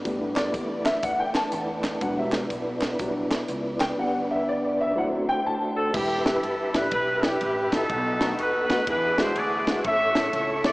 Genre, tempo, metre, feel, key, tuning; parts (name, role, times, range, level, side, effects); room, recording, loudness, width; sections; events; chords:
uptempo gospel; 122 BPM; 4/4; swing 65% on 8ths; A4 = 439 Hz
dark upright piano; accompaniment; 0.0-10.7 s; A2 to A5; -28 LUFS; left 1 dB; ensemble chorus
mellow tonewheel organ; sustained chords; 0.0-10.7 s; D3 to D6; -29 LUFS; equal; fast rotary speaker, chorus vibrato
upright bass; bass; 0.1-10.7 s; E1 to E2; -38 LUFS; equal
crisp fusion drum kit; drums; 0.1-10.7 s; crash cymbal, hi-hat, kick drum, ride cymbal, snare drum; -30 LUFS; equal
group handclap; percussion; 0.4-3.9 s; -39 LUFS; right 1 dB
warm horn section; melody; 5.8-10.7 s; B3 to E5; -24 LUFS; equal; diffuse ambient delay
wet huge ambient reverb, RT60 4.6 s; dreamy mix soaked in reverb, small speaker sound; -22 LUFS; side -20 dB against mid
0.0-5.9 A section; 5.9-10.7 B section
upright piano solo 0.0-5.9
0.1 A7sus4; 2.0 Em7; 4.0 G/D; 5.0 D7; 5.9 Em; 7.9 B7; 8.9 E9; 9.8 A